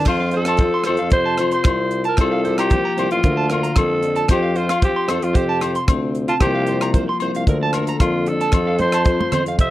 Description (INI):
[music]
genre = highlife guitar band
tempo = 114 BPM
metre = 4/4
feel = straight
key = F major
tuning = A4 = 440 Hz
[part]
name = growling alto saxophone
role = melody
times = 0.0-9.7 s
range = F4 to E5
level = -21 LUFS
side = equal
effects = none
[part]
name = fingerpicked steel-string acoustic guitar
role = accompaniment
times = 0.0-9.7 s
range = C3 to A4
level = -25 LUFS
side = left 5 dB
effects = none
[part]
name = electric guitar at the edge of break-up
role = arpeggios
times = 0.0-9.7 s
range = Bb4 to C6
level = -24 LUFS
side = right 4 dB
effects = slapback echo
[part]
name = warm tuba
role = bass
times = 0.0-9.7 s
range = A1 to F2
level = -23 LUFS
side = equal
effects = none
[part]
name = tight funk drum kit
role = drums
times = 0.1-9.7 s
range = crash cymbal, hi-hat, kick drum, rim click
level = -18 LUFS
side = equal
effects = none
[part]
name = agogo bells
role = percussion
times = 0.1-9.5 s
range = none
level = -29 LUFS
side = left 10 dB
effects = none
[part]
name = congas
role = percussion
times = 8.8-9.4 s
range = none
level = -25 LUFS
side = right 3 dB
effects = none
[sound]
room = small room ambience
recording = dry, close 1970s-style studio recording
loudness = -16 LUFS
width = side -15 dB against mid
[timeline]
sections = 0.1-9.7 A section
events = none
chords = 0.1 F; 2.2 C7sus4; 3.2 Bbmaj7/D; 4.3 F5; 6.4 C7sus4; 7.5 Bbmaj7/D; 8.5 F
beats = | 0.08 0.61 1.14 1.66 | 2.19 2.72 3.25 3.77 | 4.30 4.83 5.36 5.89 | 6.41 6.94 7.47 8.00 | 8.53 9.05 9.58